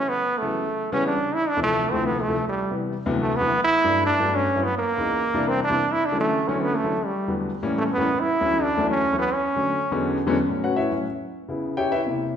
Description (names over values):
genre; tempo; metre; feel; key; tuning
jazz; 210 BPM; 4/4; straight; unclear; A4 = 440 Hz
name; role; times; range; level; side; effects
brilliant trombone; melody; 0.0-10.2 s; G3 to E4; -22 LUFS; right 1 dB; none
warm grand piano; accompaniment; 0.4-12.4 s; C2 to G5; -25 LUFS; left 2 dB; none
room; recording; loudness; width
wet recital hall reverb, RT60 1.5 s; recorded in a church or concert hall; -20 LUFS; side -8 dB against mid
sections
0.0-1.2 A section; 1.2-10.3 B section; 10.3-12.4 C section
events
grand piano solo 10.3-12.4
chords
0.0 A69; 0.6 A7; 1.2 Dm7; 2.3 Cmaj7; 2.9 D13; 3.5 Gmaj9; 4.6 C#m7; 5.2 C9; 5.8 Dmaj9; 6.9 Em11; 7.5 A7b9; 8.1 Dmaj9; 9.2 Dmaj7; 9.8 E13; 10.3 A69; 11.5 C#m7b5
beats
| 0.07 0.35 0.64 0.92 | 1.21 1.49 1.78 2.06 | 2.35 2.63 2.92 3.20 | 3.49 3.77 4.06 4.34 | 4.63 4.91 5.20 5.49 | 5.77 6.06 6.34 6.63 | 6.91 7.20 7.49 7.77 | 8.06 8.34 8.63 8.92 | 9.20 9.49 9.77 10.06 | 10.35 10.63 10.92 11.20 | 11.49 11.78 12.06 12.35